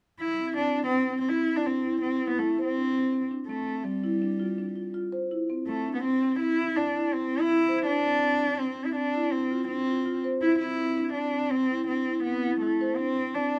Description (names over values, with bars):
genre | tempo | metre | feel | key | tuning
contemporary instrumental, chamber music in an uneven meter | 164 BPM | 7/4 | straight | A minor | A4 = 440 Hz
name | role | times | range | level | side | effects
dark cello | melody | 0.2-13.6 s | G3 to E4 | -30 LUFS | equal | none
marimba with soft mallets | arpeggios | 0.2-13.6 s | C4 to C5 | -31 LUFS | equal | none
room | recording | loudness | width
light reverb | none | -27 LUFS | mono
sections
0.2-13.6 A section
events
none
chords
0.2 Amadd11 (rootless); 2.8 G7sus4; 5.3 Amadd11 (rootless); 7.9 Csus2; 10.4 Am (rootless); 13.0 Csus2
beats
| 0.21 0.58 0.94 1.31 1.67 2.04 2.40 | 2.77 3.13 3.50 3.86 4.22 4.59 4.95 | 5.32 5.68 6.05 6.42 6.78 7.14 7.51 | 7.88 8.24 8.61 8.97 9.34 9.70 10.07 | 10.44 10.80 11.17 11.53 11.90 12.26 12.63 | 12.99 13.36